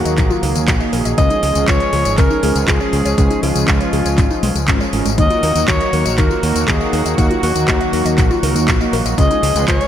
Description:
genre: italo disco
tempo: 120 BPM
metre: 4/4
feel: straight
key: Eb minor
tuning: A4 = 441 Hz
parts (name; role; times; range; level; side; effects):
- warm alto saxophone; melody; 0.0-9.9 s; F4 to Eb5; -20 LUFS; equal; ping-pong delay
- warm analog pad; sustained chords; 0.0-9.9 s; Eb3 to Ab4; -22 LUFS; left 1 dB; chorus
- warbly dusty pluck; arpeggios; 0.0-9.9 s; Db3 to Eb5; -24 LUFS; left 4 dB; chorus, tape echo
- mellow synth brass; stabs; 0.0-9.9 s; Ab3 to Eb5; -23 LUFS; right 3 dB; chorus
- growling fingered electric bass; bass; 0.0-9.8 s; Ab1 to Eb2; -20 LUFS; equal; overdrive
- house drum kit; drums; 0.1-9.9 s; handclaps, hi-hat, tambourine; -22 LUFS; equal; none
- electronic kick drum; drums; 0.2-9.8 s; none; -16 LUFS; equal; none
room: light reverb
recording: none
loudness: -13 LUFS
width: side -10 dB against mid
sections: 0.0-9.9 A section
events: none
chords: 0.0 Ebm; 1.2 Db; 5.2 Ebm; 9.2 Db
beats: 0.18 0.68 | 1.18 1.68 2.18 2.68 | 3.18 3.68 4.18 4.68 | 5.18 5.68 6.18 6.68 | 7.18 7.68 8.18 8.68 | 9.18 9.68

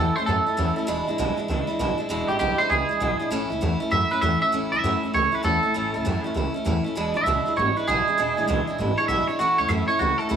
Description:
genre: rock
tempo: 197 BPM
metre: 4/4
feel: swing 65% on 8ths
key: A major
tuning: A4 = 437 Hz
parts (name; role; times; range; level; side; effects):
- twangy electric guitar; melody; 0.0-10.4 s; F#4 to E5; -23 LUFS; right 2 dB; analog chorus, analog delay
- picked steel-string acoustic guitar; accompaniment; 0.0-10.4 s; E2 to E4; -26 LUFS; equal; none
- upright bass; bass; 0.0-10.4 s; E1 to F#2; -27 LUFS; right 1 dB; none
room: moderate echo chamber reverb, RT60 1.3 s, small room ambience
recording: none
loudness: -21 LUFS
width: side -8 dB against mid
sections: 0.0-4.5 A section; 4.5-10.4 B section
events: none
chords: 0.0 A; 0.9 E7; 3.3 A; 7.0 E7; 9.4 A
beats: 0.27 0.58 | 0.88 1.19 1.49 1.79 | 2.10 2.40 2.71 3.01 | 3.31 3.62 3.92 4.22 | 4.53 4.83 5.14 5.44 | 5.75 6.05 6.36 6.66 | 6.96 7.27 7.57 7.88 | 8.18 8.48 8.79 9.09 | 9.40 9.70 10.01 10.31

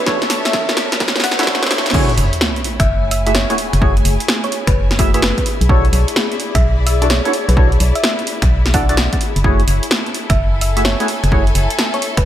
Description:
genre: UK garage, two-step garage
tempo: 128 BPM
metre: 4/4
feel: swing 65% on 16ths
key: F# minor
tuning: A4 = 439 Hz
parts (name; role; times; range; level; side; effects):
- thumb-piano-like synth pluck; melody; 0.0-12.3 s; B4 to F#5; -24 LUFS; equal; chorus, digital delay
- ethereal airy pad; sustained chords; 0.0-12.3 s; G#4 to E5; -29 LUFS; left 4 dB; ensemble chorus, built-in reverb, phaser, sidechain pumping
- organ-like FM bass; bass; 0.0-12.3 s; F#1 to B1; -15 LUFS; equal; high-pass filter
- riser and sub drop; sound effects; 0.0-3.8 s; none; -24 LUFS; equal; none
- rich studio string section; texture; 0.0-12.3 s; A3 to A5; -27 LUFS; left 2 dB; sidechain pumping
- percussive organ stab; stabs; 0.1-11.4 s; A3 to E5; -21 LUFS; equal; lush chorus, digital delay
- electronic kick drum; drums; 0.1-12.2 s; none; -17 LUFS; equal; overdrive
- punchy analog drum machine; drums; 0.1-12.2 s; crash cymbal, finger snaps, hi-hat, snare drum; -18 LUFS; equal; overdrive, gated reverb
room: light reverb, digital ambience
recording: bright 1980s-style digital production, high-pass filter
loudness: -13 LUFS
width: side -11 dB against mid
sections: 0.0-1.9 A section; 1.9-12.3 B section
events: build-up 0.0-1.9; drum fill 0.0-1.9; riser 0.0-1.9; drop 1.9-12.3; impact 1.9-3.8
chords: 0.0 Bm11; 1.9 F#m9; 5.5 Bm11; 9.4 F#m9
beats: | 0.07 0.54 1.00 1.47 | 1.94 2.41 2.88 3.35 | 3.82 4.29 4.75 5.22 | 5.69 6.16 6.63 7.10 | 7.57 8.04 8.51 8.97 | 9.44 9.91 10.38 10.85 | 11.32 11.79

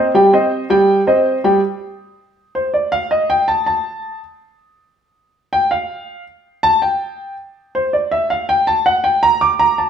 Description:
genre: latin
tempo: 162 BPM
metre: 4/4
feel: straight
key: unclear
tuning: A4 = 440 Hz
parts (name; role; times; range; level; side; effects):
- warm baby grand piano; solo; 0.0-9.9 s; G3 to D6; -14 LUFS; equal; none
room: wet stone room reverb, RT60 1.1 s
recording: band playing live in one room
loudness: -13 LUFS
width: side -8 dB against mid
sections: 0.0-1.6 A section; 1.6-9.9 B section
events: grand piano solo 1.6-9.9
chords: 0.1 Cm; 1.6 N.C.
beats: | 0.14 0.51 0.88 1.25 | 1.62 1.99 2.36 2.73 | 3.10 3.48 3.85 4.22 | 4.59 4.96 5.33 5.70 | 6.07 6.44 6.82 7.19 | 7.56 7.93 8.30 8.67 | 9.04 9.41 9.78

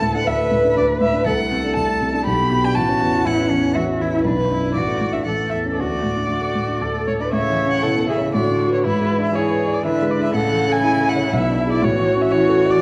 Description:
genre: quick classical-period movement for piano quartet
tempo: 120 BPM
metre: 3/4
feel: straight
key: D major, A major from 7.3 s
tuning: A4 = 440 Hz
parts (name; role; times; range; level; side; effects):
- rich violin; melody; 0.0-12.8 s; B4 to B5; -25 LUFS; equal; none
- rich cello; second line; 0.0-12.8 s; B2 to B4; -26 LUFS; equal; none
- dark grand piano; accompaniment; 0.0-12.8 s; A1 to D5; -23 LUFS; equal; none
- clear viola; accompaniment; 7.3-12.8 s; E4 to C#5; -23 LUFS; equal; none
room: wet recital hall reverb, RT60 1.5 s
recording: worn, warbling old tape, cassette tape, warbly pitch drift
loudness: -19 LUFS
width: mono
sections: 0.0-7.3 A section; 7.3-12.8 B section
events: none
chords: 0.0 D5; 1.3 D7/C; 2.3 G/B; 2.8 A; 4.3 Bm; 4.8 D/A; 5.3 A; 5.8 D; 7.3 A; 8.3 Bm7/A; 8.8 E7/G#; 10.3 A; 11.3 E7/B; 11.8 A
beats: 0.28 0.77 | 1.27 1.77 2.26 | 2.76 3.25 3.75 | 4.25 4.75 5.26 | 5.78 6.29 6.81 | 7.32 7.83 8.34 | 8.84 9.34 9.84 | 10.34 10.84 11.34 | 11.83 12.33

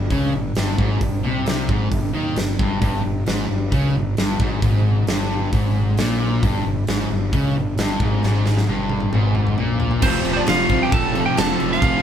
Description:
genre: hard rock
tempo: 133 BPM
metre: 4/4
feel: straight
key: unclear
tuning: A4 = 440 Hz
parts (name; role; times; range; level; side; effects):
- crunchy overdriven guitar; riff; 0.0-12.0 s; F2 to F3; -22 LUFS; left 3 dB; none
- sludgy distorted guitar; riff; 0.0-12.0 s; F2 to F3; -28 LUFS; right 3 dB; overdrive
- fuzz fingered electric bass; bass; 0.0-12.0 s; F1 to Eb2; -25 LUFS; equal; overdrive
- huge arena drum kit; drums; 0.1-11.9 s; crash cymbal, hi-hat, kick drum, snare drum, toms; -22 LUFS; right 1 dB; none
- lightly driven lead guitar; melody; 10.0-12.0 s; C5 to A5; -21 LUFS; right 3 dB; none
- distorted electric guitar; riff; 10.0-12.0 s; F2 to F3; -27 LUFS; right 1 dB; distortion
- high-gain lead guitar; second line; 10.1-12.0 s; C4 to A4; -28 LUFS; right 6 dB; distortion
room: moderate small room reverb, RT60 0.5 s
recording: band playing live in one room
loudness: -17 LUFS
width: side -9 dB against mid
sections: 0.0-10.0 A section; 10.0-12.0 B section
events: drum fill 8.2-10.0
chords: 0.0 Gm; 10.0 F5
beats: 0.11 0.56 | 1.02 1.47 1.92 2.37 | 2.82 3.27 3.73 4.18 | 4.63 5.08 5.53 5.98 | 6.43 6.88 7.33 7.78 | 8.23 8.68 9.13 9.58 | 10.03 10.48 10.93 11.38 | 11.83

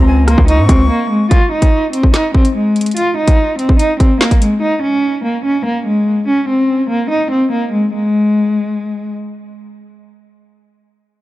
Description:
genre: hip hop, drill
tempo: 145 BPM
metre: 4/4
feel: half-time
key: unclear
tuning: A4 = 444 Hz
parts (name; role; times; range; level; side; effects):
- warm cello; melody; 0.0-9.1 s; Ab3 to F4; -14 LUFS; equal; low-pass filter, tape echo
- jazz flute; second line; 0.0-1.3 s; Ab5 to Db6; -25 LUFS; left 4 dB; tape echo
- distorted 808-style bass; bass; 0.0-0.9 s; Db2 to Ab2; -11 LUFS; equal; distortion
- drill drum kit; drums; 0.3-4.5 s; handclaps, hi-hat, kick drum, rim click, snare drum; -12 LUFS; equal; vintage 12-bit sampler grit
room: light reverb, studio ambience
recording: dark, warm production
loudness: -11 LUFS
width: side -16 dB against mid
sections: 0.0-1.3 A section; 1.3-7.9 B section; 7.9-11.2 C section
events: break 0.9-1.3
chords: 0.0 Db5; 1.3 N.C.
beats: 0.07 0.48 0.90 | 1.31 1.72 2.14 2.55 | 2.97 3.38 3.79 4.21 | 4.62 5.04 5.45 5.86 | 6.28 6.69 7.10 7.52 | 7.93 8.35 8.76

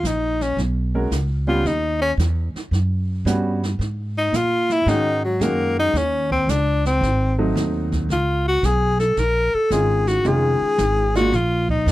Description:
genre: jazz, small-group swing and bop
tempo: 112 BPM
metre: 4/4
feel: swing 67% on 8ths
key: Eb minor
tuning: A4 = 439 Hz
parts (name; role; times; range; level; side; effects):
- clear tenor saxophone; melody; 0.0-11.9 s; Gb3 to Bb4; -20 LUFS; left 2 dB; none
- upright bass; bass; 0.0-11.9 s; F1 to Bb2; -22 LUFS; right 1 dB; none
- jazz brush drum kit; drums; 0.0-11.9 s; brushed snare drum, hi-hat, kick drum, snare drum; -30 LUFS; right 2 dB; none
- clear baby grand piano; accompaniment; 0.9-11.3 s; Eb3 to Bb4; -24 LUFS; right 1 dB; none
room: small room ambience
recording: none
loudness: -18 LUFS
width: side -16 dB against mid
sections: 0.0-11.9 A section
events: tenor saxophone solo 0.0-11.9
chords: 0.0 Eb7(no3); 1.7 Eb7alt; 3.8 Absus2; 5.9 Dbsus2; 7.0 Ab7b9; 8.1 Db6; 10.2 Gbmaj13/F (rootless); 11.3 Bb5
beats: 0.04 0.58 1.11 | 1.65 2.19 2.72 3.26 | 3.80 4.33 4.87 5.41 | 5.95 6.48 7.02 7.56 | 8.10 8.63 9.17 9.71 | 10.25 10.79 11.32 11.86

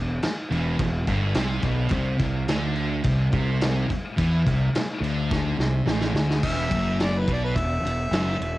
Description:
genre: garage rock duo or trio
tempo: 106 BPM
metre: 4/4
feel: straight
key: E minor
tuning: A4 = 440 Hz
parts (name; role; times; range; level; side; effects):
- thick fuzz guitar; riff; 0.0-8.6 s; E2 to E3; -26 LUFS; equal; distortion, cassette tape
- fuzz fingered electric bass; bass; 0.0-8.6 s; E1 to E2; -26 LUFS; equal; overdrive
- vintage drum kit; drums; 0.2-8.5 s; crash cymbal, kick drum, ride cymbal, snare drum; -27 LUFS; equal; none
- clear harmonica; melody; 6.4-8.6 s; B4 to E5; -28 LUFS; equal; overdrive, cassette tape
room: studio reverb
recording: home recording on cassette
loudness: -21 LUFS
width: side -17 dB against mid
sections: 0.0-6.4 A section; 6.4-8.6 B section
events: drum fill 5.3-6.4; harmonica solo 6.4-8.6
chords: 0.0 Em; 1.9 Amadd11 (rootless); 6.4 E5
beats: 0.22 0.78 1.35 | 1.91 2.47 3.04 3.60 | 4.16 4.73 5.29 5.86 | 6.42 6.99 7.55 8.11

